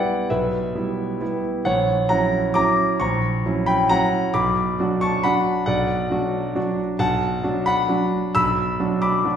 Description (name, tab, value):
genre	classical, piano waltz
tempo	134 BPM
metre	3/4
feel	rubato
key	B minor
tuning	A4 = 438 Hz
part	clear concert grand piano	solo	0.0-9.4 s	A#1 to E6	-19 LUFS	equal	none
room	wet recital hall reverb, RT60 1.3 s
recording	recorded in a church or concert hall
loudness	-19 LUFS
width	side -8 dB against mid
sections	0.0-9.4 A section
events	none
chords	0.0 Em/B; 1.7 F#7/A#; 4.3 Bm; 7.0 Bm7